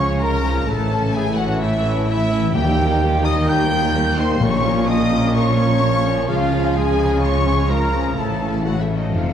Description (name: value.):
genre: cinematic.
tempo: 128 BPM.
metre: 4/4.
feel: straight.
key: unclear.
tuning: A4 = 438 Hz.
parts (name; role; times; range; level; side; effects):
dark studio violin section; melody; 0.0-9.3 s; Eb5 to G6; -27 LUFS; left 4 dB; none.
mellow flute section; second line; 0.0-9.3 s; Eb5 to G6; -27 LUFS; equal; none.
rich symphonic violin section; second line; 0.0-9.3 s; Bb3 to Bb4; -31 LUFS; left 4 dB; none.
clear symphonic viola section; accompaniment; 0.0-9.3 s; Eb3 to C#4; -29 LUFS; right 1 dB; none.
mellow French horn section; sustained chords; 0.0-9.3 s; Ab3 to F4; -27 LUFS; left 5 dB; none.
warm trombone section; sustained chords; 0.0-9.3 s; Ab2 to F3; -27 LUFS; right 1 dB; none.
concert harp; arpeggios; 0.0-9.3 s; F2 to Bb5; -27 LUFS; left 7 dB; none.
warm trumpet section; stabs; 0.0-9.3 s; Eb4 to G5; -24 LUFS; equal; none.
dark symphonic cello section; bass; 0.0-9.3 s; Eb2 to Db3; -24 LUFS; right 2 dB; none.
warm symphonic double bass section; bass; 0.0-9.3 s; F1 to Eb2; -22 LUFS; right 3 dB; none.
timpani; percussion; 2.5-5.1 s; Bb2 to Eb3; -26 LUFS; left 1 dB; none.
room: wet scoring stage reverb, RT60 1.6 s.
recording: dark, warm production.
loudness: -16 LUFS.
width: side -9 dB against mid.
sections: 0.0-9.3 A section.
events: none.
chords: 0.0 Db; 0.7 A; 2.5 Eb; 4.4 Bbm; 6.3 Db; 8.2 A.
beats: 0.21 | 0.68 1.15 1.61 2.08 | 2.54 3.01 3.48 3.95 | 4.42 4.89 5.36 5.83 | 6.30 6.76 7.23 7.70 | 8.18 8.65 9.13.